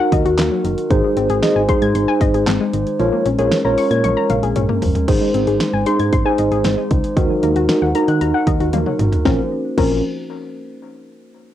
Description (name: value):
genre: synth-pop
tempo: 115 BPM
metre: 4/4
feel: straight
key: Bb minor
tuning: A4 = 435 Hz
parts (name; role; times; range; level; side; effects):
- mellow tine electric piano; accompaniment; 0.0-10.0 s; Db4 to Eb5; -18 LUFS; right 1 dB; fast stereo tremolo, low-pass filter
- glass harmonica; sustained chords; 0.0-9.5 s; Ab3 to C5; -22 LUFS; right 1 dB; low-pass filter
- soft round pluck; arpeggios; 0.0-10.0 s; Eb3 to Ab6; -22 LUFS; left 8 dB; chorus, low-pass filter, analog delay
- solid FM bass; bass; 0.1-10.0 s; Gb1 to Eb3; -21 LUFS; right 1 dB; none
- pop drum kit; drums; 0.1-9.9 s; crash cymbal, handclaps, hi-hat, kick drum, snare drum, toms; -20 LUFS; right 1 dB; none
room: moderate small room reverb, RT60 0.6 s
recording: home recording on cassette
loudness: -14 LUFS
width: side -12 dB against mid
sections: 0.0-5.1 A section; 5.1-9.3 B section; 9.3-11.3 C section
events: drum fill 4.0-5.1, 8.7-9.3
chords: 0.0 Ebm; 0.9 Ab; 3.0 Bbm7; 5.1 Ab; 7.2 Ebm; 9.3 Bbmadd9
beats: 0.39 | 0.91 1.43 1.95 2.47 | 2.99 3.52 4.04 4.56 | 5.08 5.60 6.12 6.65 | 7.17 7.69 8.21 8.73 | 9.26 9.78